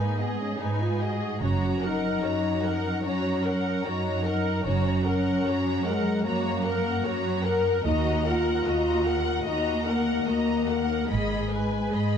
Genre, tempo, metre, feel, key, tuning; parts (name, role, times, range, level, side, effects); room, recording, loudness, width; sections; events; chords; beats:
cinematic; 75 BPM; 4/4; straight; F# major; A4 = 441 Hz
warm symphonic violin section; melody; 0.0-12.2 s; D#5 to B5; -35 LUFS; left 2 dB
warm symphonic violin section; second line; 0.0-12.2 s; G#4 to F#5; -34 LUFS; left 3 dB
clear symphonic viola section; accompaniment; 0.0-12.2 s; D#4 to B4; -34 LUFS; right 2 dB
mellow French horn section; sustained chords; 0.0-12.2 s; G#3 to A#4; -28 LUFS; left 3 dB
rich symphonic cello section; bass; 0.0-12.2 s; D#2 to G#2; -29 LUFS; right 3 dB
rich symphonic double bass section; bass; 1.4-11.8 s; F#1 to D#2; -29 LUFS; right 4 dB
moderate concert hall reverb, RT60 2.1 s; dark, warm production; -24 LUFS; side -8 dB against mid
0.0-12.2 A section
0.0 G#m; 1.4 F#; 7.9 D#m; 11.1 G#m
0.60 | 1.42 2.23 3.04 3.85 | 4.65 5.45 6.25 7.05 | 7.85 8.66 9.46 10.27 | 11.09 11.93